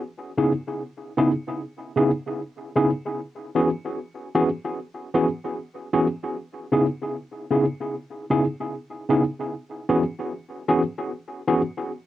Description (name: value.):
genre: reggae.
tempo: 76 BPM.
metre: 4/4.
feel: straight.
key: C# minor.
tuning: A4 = 440 Hz.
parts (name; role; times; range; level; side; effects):
tine electric piano; solo; 0.4-11.6 s; C#3 to G#4; -22 LUFS; equal; overdrive, fast stereo tremolo, cassette tape, analog delay.
room: wet booth ambience, RT60 0.2 s.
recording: home recording on cassette.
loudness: -22 LUFS.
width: side -13 dB against mid.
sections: 0.0-12.1 A section.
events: none.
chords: 0.0 C#m9; 3.2 E69; 6.3 C#m9; 9.5 E69.